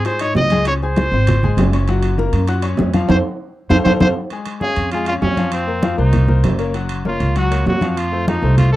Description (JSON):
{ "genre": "latin, salsa", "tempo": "197 BPM", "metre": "4/4", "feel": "straight", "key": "unclear", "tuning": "A4 = 439 Hz", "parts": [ { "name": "bright trumpet", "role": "melody", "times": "0.0-8.8 s", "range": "C4 to Eb5", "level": "-21 LUFS", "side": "right 1 dB", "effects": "none" }, { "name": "upright bass", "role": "bass", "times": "0.0-8.8 s", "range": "Gb1 to Ab2", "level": "-18 LUFS", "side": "right 1 dB", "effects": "none" }, { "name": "timbales", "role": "percussion", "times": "0.0-8.7 s", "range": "none", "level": "-25 LUFS", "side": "right 6 dB", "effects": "none" }, { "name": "bright concert grand piano", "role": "accompaniment", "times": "0.1-8.8 s", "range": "F3 to Ab6", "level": "-23 LUFS", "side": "left 6 dB", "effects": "none" }, { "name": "bongos", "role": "percussion", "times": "0.1-4.1 s", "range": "none", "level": "-24 LUFS", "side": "left 4 dB", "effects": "none" }, { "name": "congas", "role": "percussion", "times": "0.1-8.8 s", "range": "none", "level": "-20 LUFS", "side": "equal", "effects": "none" } ], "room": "little or no reverb", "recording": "dry, close 1970s-style studio recording", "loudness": "-14 LUFS", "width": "side -15 dB against mid", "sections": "0.0-4.3 A section; 4.3-8.8 B section", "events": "band accent 3.1-4.3; drum fill 3.9-4.3", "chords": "0.0 Ab; 0.7 Db5; 1.9 Gb; 3.1 F; 4.3 Db; 5.5 F7sus4; 6.7 Gbmaj7; 8.0 F7", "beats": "0.05 0.36 | 0.66 0.96 1.27 1.57 | 1.88 2.18 2.49 2.79 | 3.10 3.40 3.70 4.01 | 4.31 4.62 4.92 5.22 | 5.53 5.83 6.14 6.44 | 6.75 7.05 7.36 7.66 | 7.97 8.27 8.57" }